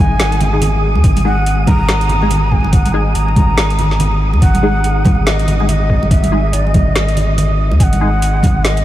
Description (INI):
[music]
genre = deep dubstep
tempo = 142 BPM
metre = 4/4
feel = swing 60% on 16ths, half-time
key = unclear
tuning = A4 = 438 Hz
[part]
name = breathy shakuhachi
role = melody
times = 0.0-8.8 s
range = D#5 to A#5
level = -20 LUFS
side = equal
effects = dub echo
[part]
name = saturated sub bass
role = bass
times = 0.0-8.8 s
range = G#1 to D#2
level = -15 LUFS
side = equal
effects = none
[part]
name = wind-like tuned noise texture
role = texture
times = 0.0-8.8 s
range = D#6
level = -25 LUFS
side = right 3 dB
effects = built-in reverb
[part]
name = garage drum kit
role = drums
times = 0.2-8.8 s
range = hi-hat, snare drum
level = -22 LUFS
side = equal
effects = overdrive
[part]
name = congas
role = percussion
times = 0.4-8.5 s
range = none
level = -21 LUFS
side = right 2 dB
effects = none
[part]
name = filtered dub chord stab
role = stabs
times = 0.5-8.1 s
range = G#3 to G#4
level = -23 LUFS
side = left 1 dB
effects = phaser, ensemble chorus, dub echo
[part]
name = electronic kick drum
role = drums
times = 1.0-8.5 s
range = none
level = -12 LUFS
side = equal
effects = overdrive
[sound]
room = moderate huge ambient reverb, RT60 8.1 s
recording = dreamy mix soaked in reverb, vinyl crackle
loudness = -11 LUFS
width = side -14 dB against mid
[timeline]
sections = 0.0-8.8 A section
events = none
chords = 0.0 G#5